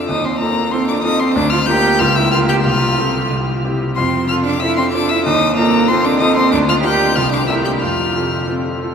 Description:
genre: quick classical-period movement for piano trio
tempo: 93 BPM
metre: 2/4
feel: straight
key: F major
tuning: A4 = 440 Hz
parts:
  - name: warm violin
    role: melody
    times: 0.0-8.5 s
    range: Bb5 to G6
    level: -19 LUFS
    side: left 5 dB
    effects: none
  - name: clear cello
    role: second line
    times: 0.0-8.5 s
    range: Bb3 to G4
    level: -18 LUFS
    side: right 3 dB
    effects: none
  - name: clear concert grand piano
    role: accompaniment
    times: 0.0-8.9 s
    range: C2 to Bb4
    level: -18 LUFS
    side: left 1 dB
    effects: none
room: wet cathedral reverb, RT60 6.2 s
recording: none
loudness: -13 LUFS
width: side -7 dB against mid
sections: 0.0-8.9 A section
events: none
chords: 0.1 F7/Eb; 1.4 Bb/D; 2.0 Bbm/Db; 2.7 F/C; 3.3 C; 4.0 F; 5.3 F7/Eb; 6.5 Bb/D; 7.2 Csus2; 7.8 F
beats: | 0.09 0.73 | 1.36 2.00 | 2.66 3.31 | 3.97 4.62 | 5.26 5.89 | 6.52 7.16 | 7.81 8.48

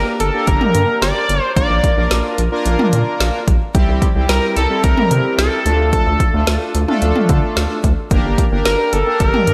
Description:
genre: synth-pop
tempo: 110 BPM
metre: 4/4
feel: straight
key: unclear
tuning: A4 = 441 Hz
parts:
  - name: octave-doubled lead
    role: melody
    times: 0.0-9.5 s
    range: A4 to D5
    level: -21 LUFS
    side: equal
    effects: chorus, delay
  - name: analog synth brass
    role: accompaniment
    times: 0.0-9.5 s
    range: G3 to Bb4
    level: -23 LUFS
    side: equal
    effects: chorus
  - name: rubbery square bass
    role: bass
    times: 0.0-9.5 s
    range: G1 to D3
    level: -20 LUFS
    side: equal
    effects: none
  - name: deep house drum kit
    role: drums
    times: 0.2-9.5 s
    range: hi-hat, kick drum, snare drum, toms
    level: -20 LUFS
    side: equal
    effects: none
room: moderate lush hall reverb, RT60 2.1 s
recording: dreamy mix soaked in reverb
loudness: -16 LUFS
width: mono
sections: 0.0-9.5 A section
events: none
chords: 0.0 Gm; 1.6 Bb; 3.7 C; 5.7 Dm; 8.1 Gm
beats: 0.47 1.02 | 1.57 2.11 2.66 3.20 | 3.75 4.29 4.84 5.38 | 5.93 6.47 7.02 7.57 | 8.11 8.66 9.20

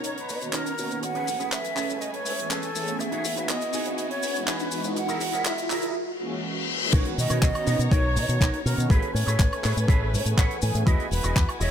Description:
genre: nu-disco, nu disco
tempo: 122 BPM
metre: 4/4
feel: straight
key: B major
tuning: A4 = 440 Hz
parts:
  - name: warm symphonic violin section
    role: sustained chords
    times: 0.0-11.7 s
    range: G#3 to A#5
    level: -35 LUFS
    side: left 1 dB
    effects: sidechain pumping
  - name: electric guitar with an envelope filter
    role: riff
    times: 0.0-11.7 s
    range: C#4 to A5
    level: -33 LUFS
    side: right 2 dB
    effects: ensemble chorus, low-pass filter
  - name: tight funk drum kit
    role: drums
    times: 0.0-11.7 s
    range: crash cymbal, handclaps, hi-hat, shaker, woodblock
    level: -31 LUFS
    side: equal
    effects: none
  - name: riser and reverse cymbal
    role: sound effects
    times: 2.2-6.9 s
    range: none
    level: -32 LUFS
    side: left 2 dB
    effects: none
  - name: breathy concert flute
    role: melody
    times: 0.1-11.7 s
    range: A4 to F#5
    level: -31 LUFS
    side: right 1 dB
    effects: ping-pong delay
  - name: fingered electric bass with an envelope filter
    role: bass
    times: 0.1-11.7 s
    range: E1 to B2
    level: -28 LUFS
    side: equal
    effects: high-pass filter
  - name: warm analog pad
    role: accompaniment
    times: 0.4-10.8 s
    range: D#3 to G#4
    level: -34 LUFS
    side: right 1 dB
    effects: chorus, cassette tape, sidechain pumping
  - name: electronic kick drum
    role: drums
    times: 6.9-11.5 s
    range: none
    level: -21 LUFS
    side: equal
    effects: overdrive
room: light reverb, studio ambience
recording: none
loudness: -23 LUFS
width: side -9 dB against mid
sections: 0.0-6.9 A section; 6.9-11.7 B section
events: build-up 0.0-6.9; filter sweep on clean electric guitar 0.0-6.9; clean electric guitar fill 1.5-3.0, 9.9-10.9; riser 2.2-6.0; reverse cymbal 6.0-6.9; drop 6.9-11.7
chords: 0.0 Bmaj9; 1.0 Amaj9; 3.0 Emaj9; 5.0 F#9; 6.9 Bmaj9; 8.9 Amaj9; 10.9 Emaj9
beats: 0.05 0.54 | 1.03 1.52 2.02 2.51 | 3.00 3.49 3.98 4.48 | 4.97 5.46 5.95 6.44 | 6.93 7.43 7.92 8.41 | 8.90 9.39 9.89 10.38 | 10.87 11.36

